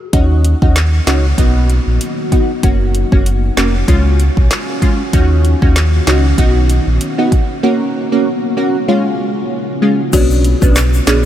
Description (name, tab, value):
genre	dancehall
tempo	96 BPM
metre	4/4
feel	swing 56% on 16ths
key	unclear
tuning	A4 = 440 Hz
part	wavetable chord stab	accompaniment	0.1-11.3 s	G#3 to F#4	-16 LUFS	equal	analog chorus, sidechain pumping
part	deep dark ambient pad	sustained chords	0.5-11.3 s	C#3 to C#5	-21 LUFS	equal	chorus, built-in reverb, sidechain pumping
part	sub bass with octave	bass	0.1-11.3 s	E#1 to D#2	-12 LUFS	equal	none
part	afro-pop drum kit	drums	0.1-11.2 s	crash cymbal, handclaps, hi-hat, kick drum, snare drum	-15 LUFS	equal	none
part	folk marimba with medium mallets	melody	10.1-11.2 s	F#4 to B4	-21 LUFS	equal	ping-pong delay
part	egg shaker	percussion	10.1-11.2 s	none	-28 LUFS	left 7 dB	none
room	light reverb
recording	none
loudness	-11 LUFS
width	side -11 dB against mid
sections	0.1-10.1 A section; 10.1-11.3 B section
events	break 7.6-10.1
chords	0.1 D#m7; 1.4 B; 2.6 F#; 3.9 C#; 5.1 D#m7; 6.4 B; 7.6 F#; 8.9 C#; 10.1 Bmadd9